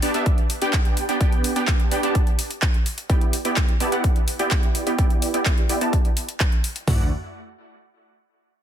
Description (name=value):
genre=EDM, festival progressive house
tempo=127 BPM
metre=4/4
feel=straight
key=D major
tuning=A4 = 442 Hz
part: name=supersaw stab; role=riff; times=0.0-7.1 s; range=A3 to A5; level=-24 LUFS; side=right 1 dB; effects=lush chorus, cassette tape, sidechain pumping, low-pass filter, tape echo
part: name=big-room dance drum kit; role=drums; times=0.0-6.9 s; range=handclaps, hi-hat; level=-27 LUFS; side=equal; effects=none
part: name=big-room dance drum kit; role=drums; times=0.3-7.0 s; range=hi-hat, kick drum, toms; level=-20 LUFS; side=equal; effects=none
part: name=wide detuned saw bass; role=bass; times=6.9-7.1 s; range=D2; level=-28 LUFS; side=equal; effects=chorus, sidechain pumping
room=little or no reverb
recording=dense, heavily limited modern master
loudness=-19 LUFS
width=side -10 dB against mid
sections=0.0-6.9 A section; 6.9-8.6 B section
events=filter sweep on supersaw synth 0.0-6.9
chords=0.0 G; 3.1 Em7; 6.9 Dadd9